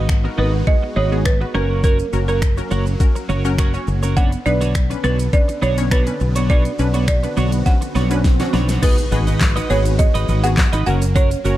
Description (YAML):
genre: dance-pop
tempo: 103 BPM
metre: 4/4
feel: straight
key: unclear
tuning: A4 = 440 Hz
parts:
  - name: folk marimba with medium hard mallets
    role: melody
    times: 0.0-11.6 s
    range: A#4 to F#5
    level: -24 LUFS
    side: right 3 dB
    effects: tape echo
  - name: punchy chord stab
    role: accompaniment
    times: 0.0-11.6 s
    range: B3 to C#5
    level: -27 LUFS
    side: left 2 dB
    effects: chorus, sidechain pumping
  - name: supersaw chords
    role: sustained chords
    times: 0.0-11.6 s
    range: D3 to B4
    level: -30 LUFS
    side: left 1 dB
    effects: sidechain pumping
  - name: twelve-string electric guitar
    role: riff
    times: 0.0-11.6 s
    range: B3 to D#5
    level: -25 LUFS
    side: right 3 dB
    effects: analog chorus
  - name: mellow fretless electric bass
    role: bass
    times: 0.0-11.6 s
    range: F#1 to B1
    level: -19 LUFS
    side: equal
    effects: ensemble chorus, sidechain pumping
  - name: smooth R&B drum kit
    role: drums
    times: 0.1-11.6 s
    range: crash cymbal, finger snaps, handclaps, hi-hat, kick drum, shaker, snare drum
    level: -17 LUFS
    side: equal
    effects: none
  - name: swell and impact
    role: sound effects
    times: 7.6-11.2 s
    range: none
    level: -29 LUFS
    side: equal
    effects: none
  - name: tube shaker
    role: percussion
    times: 8.8-11.6 s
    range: none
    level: -42 LUFS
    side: left 12 dB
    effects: none
room: little or no reverb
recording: dark, warm production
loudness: -15 LUFS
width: side -14 dB against mid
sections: 0.0-8.8 A section; 8.8-11.6 B section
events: swell 7.6-8.8; drum fill 7.7-8.8; impact 8.8-11.2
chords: 0.0 G#m7; 1.5 F#; 4.2 Bmadd9; 8.8 G#m7; 10.9 F#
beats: 0.09 0.67 1.25 | 1.84 2.42 3.00 3.58 | 4.17 4.75 5.33 5.92 | 6.50 7.08 7.66 8.24 | 8.83 9.41 9.99 10.57 | 11.16